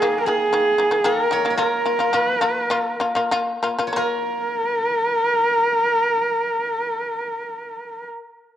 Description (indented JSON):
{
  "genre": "mongolian traditional, Mongolian folk",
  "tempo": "90-120 BPM",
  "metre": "4/4",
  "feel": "straight",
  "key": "Bb yu mode",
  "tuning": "A4 = 445 Hz",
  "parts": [
    { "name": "warm horsehead fiddle", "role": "melody", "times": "0.0-8.1 s", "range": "Ab4 to Bb4", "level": "-20 LUFS", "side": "right 1 dB", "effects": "none" },
    { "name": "steel-string zither", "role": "second line", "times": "0.0-8.1 s", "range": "Ab4 to Db5", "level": "-27 LUFS", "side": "right 2 dB", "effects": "none" },
    { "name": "shamisen", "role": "arpeggios", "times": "0.0-8.1 s", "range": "Eb3 to F4", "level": "-22 LUFS", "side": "left 2 dB", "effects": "none" }
  ],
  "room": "wet spring reverb, RT60 1.8 s",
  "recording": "home recording on cassette",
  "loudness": "-18 LUFS",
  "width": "side -11 dB against mid",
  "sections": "0.0-4.0 A section; 4.0-8.6 B section",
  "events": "slowing down 0.0-4.0",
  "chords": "0.0 Eb5; 1.6 Bb5",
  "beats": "0.03 0.53 1.05 | 1.58 2.14 2.71 3.32 | 3.96 4.63 5.29 5.96 | 6.62 7.28 7.95"
}